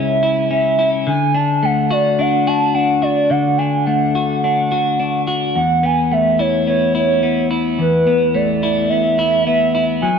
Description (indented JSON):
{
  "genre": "dream pop",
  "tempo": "107 BPM",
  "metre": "4/4",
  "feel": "straight",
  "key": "E mixolydian",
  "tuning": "A4 = 435 Hz",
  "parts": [
    { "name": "hollow clarinet-like synth lead", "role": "melody", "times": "0.0-10.2 s", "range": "B4 to A5", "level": "-16 LUFS", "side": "right 2 dB", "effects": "chorus, digital delay" },
    { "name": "clean electric guitar", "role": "arpeggios", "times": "0.0-10.2 s", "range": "E2 to F#4", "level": "-17 LUFS", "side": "left 3 dB", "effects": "lush chorus, digital delay" }
  ],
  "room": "moderate lush hall reverb, RT60 1.7 s, digital ambience",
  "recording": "dark, warm production",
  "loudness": "-14 LUFS",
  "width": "side -6 dB against mid",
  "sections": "0.0-10.2 A section",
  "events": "none",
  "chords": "0.0 C#m; 1.1 D; 5.5 Esus4",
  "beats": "0.49 | 1.06 1.62 2.18 2.74 | 3.30 3.86 4.42 4.98 | 5.54 6.10 6.66 7.22 | 7.79 8.35 8.91 9.47 | 10.03"
}